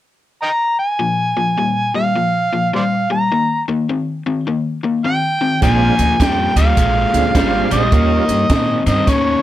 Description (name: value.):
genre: electric blues shuffle.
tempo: 104 BPM.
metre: 4/4.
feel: swing 63% on 8ths.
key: Bb mixolydian.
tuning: A4 = 440 Hz.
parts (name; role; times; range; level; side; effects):
overdriven harmonica; melody; 0.4-9.4 s; C5 to Bb5; -17 LUFS; right 1 dB; none.
overdriven electric guitar; riff; 1.0-9.4 s; Bb2 to Db4; -18 LUFS; left 4 dB; none.
tonewheel organ; accompaniment; 5.6-8.3 s; G3 to F4; -21 LUFS; right 8 dB; slow rotary speaker, chorus vibrato.
upright bass; bass; 5.6-9.3 s; Ab1 to Bb2; -18 LUFS; right 1 dB; none.
compact cocktail drum kit; drums; 5.6-9.2 s; hi-hat, kick drum, snare drum; -19 LUFS; right 1 dB; none.
room: light reverb.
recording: none.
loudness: -14 LUFS.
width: side -13 dB against mid.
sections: 0.0-1.0 A section; 1.0-5.6 B section; 5.6-9.4 C section.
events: none.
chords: 0.0 N.C.; 1.0 Bb5; 3.3 Eb; 5.6 Bb7; 7.9 Eb7.